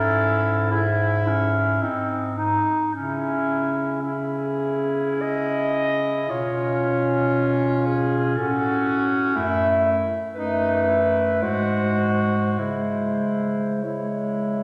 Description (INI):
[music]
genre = classical, lyrical piece for single-reed quartet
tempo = 48-62 BPM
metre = 3/4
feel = rubato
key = C# minor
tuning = A4 = 440 Hz
[part]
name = mellow clarinet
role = melody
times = 0.0-14.6 s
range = G#4 to D#5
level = -30 LUFS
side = equal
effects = none
[part]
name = clear alto saxophone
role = second line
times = 0.0-14.6 s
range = D#4 to F#4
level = -30 LUFS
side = equal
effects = none
[part]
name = mellow clarinet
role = accompaniment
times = 0.0-14.6 s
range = G#3 to E4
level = -26 LUFS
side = equal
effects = none
[part]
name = dark bass clarinet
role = bass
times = 0.0-14.6 s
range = F#2 to C#3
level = -30 LUFS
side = equal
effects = none
[sound]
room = wet scoring stage reverb, RT60 2.0 s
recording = none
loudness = -23 LUFS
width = mono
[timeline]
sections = 0.0-14.6 A section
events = none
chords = 0.0 C#m/G#; 1.8 G#; 2.9 C#m; 6.3 C#7/B; 8.4 F#m/A; 9.3 F#m7; 11.4 G#7; 12.6 C#m